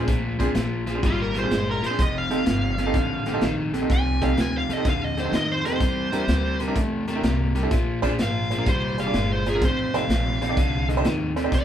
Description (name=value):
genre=electric blues shuffle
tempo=126 BPM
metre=4/4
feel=swing 67% on 8ths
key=unclear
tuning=A4 = 436 Hz
part: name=bright grand piano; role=accompaniment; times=0.0-11.5 s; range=C4 to Eb5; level=-28 LUFS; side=right 3 dB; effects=none
part: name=overdriven electric guitar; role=riff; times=0.0-11.6 s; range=F2 to Bb3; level=-26 LUFS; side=left 1 dB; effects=none
part: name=upright bass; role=bass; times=0.0-11.6 s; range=F1 to F2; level=-28 LUFS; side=equal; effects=none
part: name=crunchy breakbeat drum kit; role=drums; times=0.1-11.6 s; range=hi-hat, kick drum, snare drum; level=-26 LUFS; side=equal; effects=none
part: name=smooth overdriven lead guitar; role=melody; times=1.1-11.6 s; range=F4 to Ab5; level=-27 LUFS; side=right 1 dB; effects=none
room=moderate small room reverb, RT60 0.5 s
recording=band playing live in one room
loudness=-21 LUFS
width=side -10 dB against mid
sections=0.0-11.6 A section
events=lead electric guitar solo 0.0-11.6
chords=0.0 Bb7; 2.0 F7; 5.8 C7; 7.7 Bb7; 9.6 F7